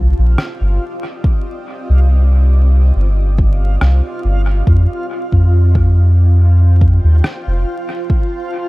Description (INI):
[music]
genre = ambient dub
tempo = 70 BPM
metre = 4/4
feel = straight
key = C dorian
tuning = A4 = 439 Hz
[part]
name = granular cloud pad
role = sustained chords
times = 0.0-8.7 s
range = C4 to A5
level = -31 LUFS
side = right 1 dB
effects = built-in reverb
[part]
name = soft dub sub bass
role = bass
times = 0.0-7.6 s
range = F1 to F2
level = -10 LUFS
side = equal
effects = tube saturation
[part]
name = backwards swelling texture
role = texture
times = 0.0-8.7 s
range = F4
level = -26 LUFS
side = right 1 dB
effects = built-in reverb
[part]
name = electronic rim click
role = drums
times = 0.4-7.4 s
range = none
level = -23 LUFS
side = equal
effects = dub echo
[part]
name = electronic kick drum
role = drums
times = 1.2-8.3 s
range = none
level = -15 LUFS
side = equal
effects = none
[sound]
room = digital ambience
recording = echo-heavy mix, vinyl crackle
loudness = -11 LUFS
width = side -21 dB against mid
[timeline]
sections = 0.0-8.7 A section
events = none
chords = 0.0 Cm; 4.7 F7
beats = 0.38 | 1.24 2.10 2.96 3.81 | 4.67 5.53 6.38 7.24 | 8.10